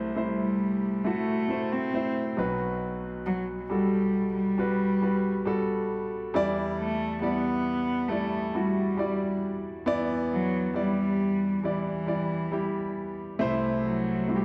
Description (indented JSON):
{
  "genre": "pop ballad",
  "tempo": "68 BPM",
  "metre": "4/4",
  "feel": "straight",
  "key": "E minor",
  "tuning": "A4 = 439 Hz",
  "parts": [
    { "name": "clear concert grand piano", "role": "accompaniment", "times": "0.0-14.4 s", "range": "B1 to D5", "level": "-31 LUFS", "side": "equal", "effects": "none" },
    { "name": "warm cello", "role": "melody", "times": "0.2-14.4 s", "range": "E3 to C4", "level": "-31 LUFS", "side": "equal", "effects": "diffuse ambient delay" }
  ],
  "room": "wet lush hall reverb, RT60 1.6 s, small room ambience",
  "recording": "dreamy mix soaked in reverb",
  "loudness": "-28 LUFS",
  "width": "mono",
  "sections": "0.0-14.4 A section",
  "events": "none",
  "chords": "0.0 C6; 2.4 Gmaj7/B; 6.3 Em7; 13.4 C6"
}